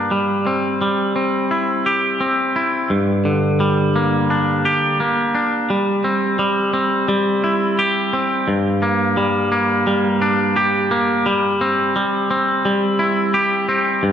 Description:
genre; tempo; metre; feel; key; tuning
rock; 86 BPM; 4/4; straight; unclear; A4 = 444 Hz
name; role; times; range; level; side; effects
twangy electric guitar; solo; 0.0-14.1 s; G2 to G4; -16 LUFS; equal; none
room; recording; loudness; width
wet scoring stage reverb, RT60 1.8 s; recorded in a church or concert hall; -16 LUFS; side -8 dB against mid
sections
0.0-5.7 A section; 5.7-14.1 B section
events
build-up 5.7-14.1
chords
0.1 C/G; 2.9 Gm; 5.7 C/G; 8.5 Gm; 11.3 C/G

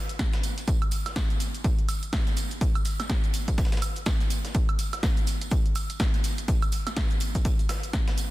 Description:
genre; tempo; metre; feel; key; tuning
house; 124 BPM; 4/4; swing 59% on 16ths; none; none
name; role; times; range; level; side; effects
punchy analog drum machine; drums; 0.1-8.3 s; cabasa, hi-hat, snare drum, woodblock; -33 LUFS; right 2 dB; none
tambourine; percussion; 0.1-8.3 s; none; -42 LUFS; right 7 dB; none
dusty soul sampler-style drum kit; drums; 0.2-8.2 s; hi-hat, snare drum; -41 LUFS; left 1 dB; high-pass filter on snare, sidechain pumping on hats, high-pass filter on hats, high-pass filter on room
electronic kick drum; drums; 0.2-8.0 s; none; -25 LUFS; equal; none
room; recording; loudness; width
little or no reverb; dense, heavily limited modern master; -24 LUFS; side -17 dB against mid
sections
0.0-8.3 A section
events
none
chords
none

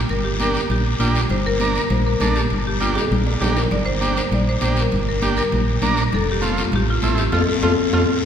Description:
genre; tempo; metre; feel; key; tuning
latin, cumbia; 199 BPM; 4/4; straight; G minor; A4 = 440 Hz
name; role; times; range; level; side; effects
marimba with medium hard mallets; melody; 0.0-8.0 s; C4 to D5; -23 LUFS; left 1 dB; none
fingered electric bass; bass; 0.0-8.0 s; F1 to F2; -21 LUFS; equal; none
congas; percussion; 0.1-8.0 s; none; -25 LUFS; left 3 dB; none
guiro; percussion; 0.1-8.0 s; none; -29 LUFS; left 4 dB; none
timbales; percussion; 0.1-8.0 s; none; -31 LUFS; right 2 dB; none
combo organ; accompaniment; 0.4-8.0 s; A3 to Bb4; -24 LUFS; right 2 dB; none
room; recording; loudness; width
wet cathedral reverb, RT60 4.2 s; recorded in a church or concert hall; -17 LUFS; side -8 dB against mid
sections
0.0-8.2 A section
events
drum fill 3.0-3.7, 7.8-8.2; band accent 7.3-8.2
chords
0.0 Gm; 6.1 F

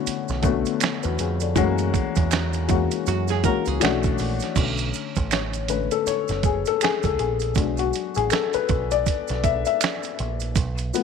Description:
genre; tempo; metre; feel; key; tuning
R&B, neo-soul; 80 BPM; 4/4; swing 59% on 16ths; B dorian; A4 = 440 Hz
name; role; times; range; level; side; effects
dark upright piano; accompaniment; 0.0-11.0 s; D3 to E5; -24 LUFS; left 12 dB; none
deep dub picked electric bass; bass; 0.1-10.9 s; F#1 to F#2; -26 LUFS; right 2 dB; none
dusty soul sampler-style drum kit; drums; 0.1-11.0 s; crash cymbal, finger snaps, hi-hat, kick drum, snare drum; -25 LUFS; right 6 dB; none
maracas and finger snaps; percussion; 0.1-11.0 s; none; -32 LUFS; right 17 dB; none
archtop guitar, miked and amplified; second line; 3.1-4.0 s; F#4 to A#4; -28 LUFS; right 15 dB; none
room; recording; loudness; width
small room ambience; 1960s-style stereo with parts hard left and right; -20 LUFS; side -6 dB against mid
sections
0.0-4.6 A section; 4.6-11.0 B section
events
upright piano solo 4.6-11.0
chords
0.0 E13sus4; 1.6 F#9; 3.8 Bm11; 4.6 Bm9; 7.6 E9

